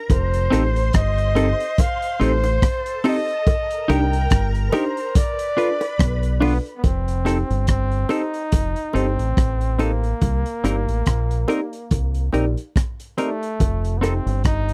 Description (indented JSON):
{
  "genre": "lovers rock reggae",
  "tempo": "71 BPM",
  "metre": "4/4",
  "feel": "swing 56% on 16ths",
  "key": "unclear",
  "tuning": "A4 = 440 Hz",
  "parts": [
    { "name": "soft string machine", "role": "second line", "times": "0.0-6.8 s", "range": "A4 to C6", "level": "-36 LUFS", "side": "equal", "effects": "ensemble chorus" },
    { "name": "breathy flugelhorn", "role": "melody", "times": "0.1-14.7 s", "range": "A3 to G5", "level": "-28 LUFS", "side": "equal", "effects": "tape echo" },
    { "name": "deep dub fingered electric bass", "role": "bass", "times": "0.1-14.7 s", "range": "F1 to C2", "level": "-23 LUFS", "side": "equal", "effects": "none" },
    { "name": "crunchy breakbeat drum kit", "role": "drums", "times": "0.1-14.7 s", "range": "hi-hat, kick drum, rim click", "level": "-22 LUFS", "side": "equal", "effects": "none" },
    { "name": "bongos", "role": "percussion", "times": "0.1-14.2 s", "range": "none", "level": "-29 LUFS", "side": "equal", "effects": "none" },
    { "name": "mellow FM electric piano", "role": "accompaniment", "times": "0.5-14.2 s", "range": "C4 to D5", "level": "-27 LUFS", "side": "equal", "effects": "chorus, slapback echo" },
    { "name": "semi-hollow electric guitar", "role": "stabs", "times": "0.5-14.1 s", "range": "C4 to B4", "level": "-25 LUFS", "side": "equal", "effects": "none" }
  ],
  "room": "little or no reverb",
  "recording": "dry, close 1970s-style studio recording",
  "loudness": "-21 LUFS",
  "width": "mono",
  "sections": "0.0-6.8 A section; 6.8-14.7 B section",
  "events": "none",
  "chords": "0.1 F7 (rootless); 3.5 Cm7; 5.2 Bm7b5; 6.8 F7; 10.2 Cm7; 13.6 F7"
}